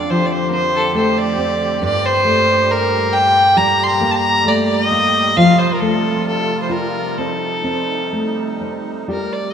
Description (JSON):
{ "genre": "celtic folk, Celtic slow air", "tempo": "60-70 BPM", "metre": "4/4", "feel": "rubato", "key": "unclear", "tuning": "A4 = 440 Hz", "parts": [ { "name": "warm fiddle", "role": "melody", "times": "0.0-9.5 s", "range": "A4 to C6", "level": "-16 LUFS", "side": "equal", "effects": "none" }, { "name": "nylon-string guitar", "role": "accompaniment", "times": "0.0-9.5 s", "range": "F2 to G4", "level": "-19 LUFS", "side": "equal", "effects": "none" }, { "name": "musette accordion", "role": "sustained chords", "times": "0.0-9.1 s", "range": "F2 to G4", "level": "-27 LUFS", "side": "right 3 dB", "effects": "none" } ], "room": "wet cathedral reverb, RT60 4.6 s", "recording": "minimal, uncompressed stereo recording", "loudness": "-14 LUFS", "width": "side -8 dB against mid", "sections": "0.0-9.1 A section", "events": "none", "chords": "0.0 Dm7/F; 1.8 Gmadd9; 5.4 F", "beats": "0.10 0.96 | 1.83 2.70 3.57 4.46 | 5.36 6.25 7.17 8.13 | 9.09" }